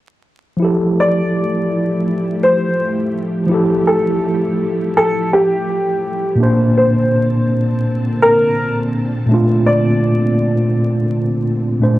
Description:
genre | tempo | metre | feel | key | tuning
hip hop | 83 BPM | 4/4 | swing 56% on 16ths | F major | A4 = 439 Hz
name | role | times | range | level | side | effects
mellow tine electric piano | accompaniment | 0.6-12.0 s | Bb2 to C5 | -16 LUFS | equal | medium stereo tremolo, low-pass filter
string machine, cellos | sustained chords | 0.6-12.0 s | Bb2 to A5 | -23 LUFS | equal | ensemble chorus, low-pass filter
warm upright piano | melody | 1.0-12.0 s | G4 to D5 | -17 LUFS | equal | low-pass filter
room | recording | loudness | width
wet small room reverb, RT60 0.6 s | worn, warbling old tape, cassette tape, vinyl crackle, warbly pitch drift | -13 LUFS | side -16 dB against mid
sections
0.6-12.0 A section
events
none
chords
0.6 Fmaj9; 6.4 Bbmaj9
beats
| 0.62 1.34 2.06 2.79 | 3.51 4.23 4.95 5.68 | 6.40 7.12 7.84 8.57 | 9.29 10.01 10.74 11.46

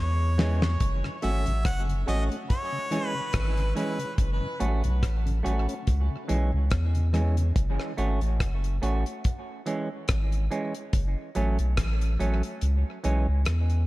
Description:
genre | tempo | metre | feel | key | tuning
dub reggae | 71 BPM | 4/4 | swing 56% on 16ths | F# minor | A4 = 439 Hz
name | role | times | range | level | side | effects
clear harmonica | melody | 0.0-4.2 s | B4 to F#5 | -34 LUFS | equal | tape echo
warm sub bass | bass | 0.0-13.9 s | F#1 to E2 | -25 LUFS | equal | none
semi-hollow electric guitar | accompaniment | 0.4-13.3 s | E3 to F#4 | -32 LUFS | right 2 dB | spring reverb, tape echo
damped 70s drum kit | drums | 0.4-13.9 s | hi-hat, kick drum, rim click, snare drum | -29 LUFS | equal | none
mellow tonewheel organ | accompaniment | 1.0-7.4 s | F#2 to C#4 | -37 LUFS | left 2 dB | slow rotary speaker, tape echo
room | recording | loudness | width
studio reverb | echo-heavy mix | -24 LUFS | side -19 dB against mid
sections
0.0-13.9 A section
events
break 0.0-0.8; drum fill 0.0-0.8; kick muted 12.6-13.9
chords
0.0 C#m; 0.8 F#m; 2.5 C#m; 4.2 F#m; 5.9 C#m; 7.6 F#m; 9.2 C#m; 10.9 F#m; 12.6 C#m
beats
| 0.81 1.65 2.49 3.34 | 4.18 5.03 5.87 6.71 | 7.56 8.40 9.25 10.09 | 10.93 11.78 12.62 13.47

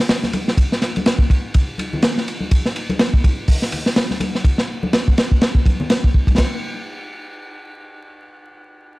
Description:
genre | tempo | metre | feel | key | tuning
breakbeat | 124 BPM | 4/4 | swing 57% on 16ths | none | none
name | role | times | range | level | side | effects
crunchy breakbeat drum kit | drums | 0.0-6.5 s | hi-hat, kick drum, ride cymbal, snare drum | -16 LUFS | equal | none
congas | percussion | 0.2-6.4 s | none | -27 LUFS | left 1 dB | none
room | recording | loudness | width
light reverb, studio ambience | dry, gritty hardware recording, vinyl crackle | -15 LUFS | side -21 dB against mid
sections
0.0-6.4 A section; 6.4-9.0 B section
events
none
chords
none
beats
0.09 | 0.58 1.06 1.54 2.03 | 2.51 3.00 3.48 3.96 | 4.45 4.93 5.42 5.90 | 6.38

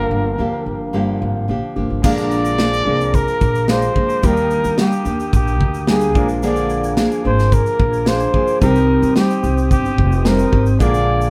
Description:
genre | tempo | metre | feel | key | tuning
acoustic pop | 110 BPM | 4/4 | straight | unclear | A4 = 440 Hz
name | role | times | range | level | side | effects
breathy trumpet | melody | 0.0-11.3 s | G4 to D5 | -23 LUFS | equal | none
nylon-string guitar | accompaniment | 0.0-11.3 s | G2 to Ab4 | -21 LUFS | equal | none
upright bass | bass | 0.0-11.3 s | F1 to Eb2 | -22 LUFS | equal | none
bright upright piano | accompaniment | 2.0-11.3 s | G3 to Bb4 | -32 LUFS | equal | none
tonewheel organ | sustained chords | 2.0-11.3 s | Bb4 to Eb6 | -35 LUFS | equal | overdrive, slow rotary speaker
modern studio drum kit | drums | 2.0-11.3 s | crash cymbal, kick drum, shaker, snare drum | -22 LUFS | equal | none
room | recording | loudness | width
wet studio ambience, RT60 0.5 s | heard from further back in the room | -17 LUFS | mono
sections
0.0-2.0 A section; 2.0-11.3 B section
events
none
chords
0.0 Gm7; 2.0 Bb7; 4.2 Ebmaj7; 6.2 Bb7; 8.6 Cm; 10.8 Bb7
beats
0.39 0.94 1.49 | 2.04 2.59 3.14 3.69 | 4.24 4.79 5.33 5.88 | 6.43 6.97 7.52 8.07 | 8.62 9.16 9.71 10.25 | 10.80

